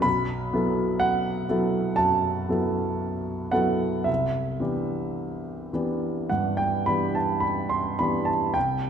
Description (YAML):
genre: classical, impressionist solo piano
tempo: 52-63 BPM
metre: 4/4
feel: rubato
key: unclear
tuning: A4 = 441 Hz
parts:
  - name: clear grand piano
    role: solo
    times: 0.0-8.9 s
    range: B1 to C6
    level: -23 LUFS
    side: right 1 dB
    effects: none
room: moderate recital hall reverb, RT60 1.6 s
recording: minimal, uncompressed stereo recording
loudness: -23 LUFS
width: side -8 dB against mid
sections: 0.0-8.9 A section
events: none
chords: 0.0 B7sus4; 4.1 Cmaj9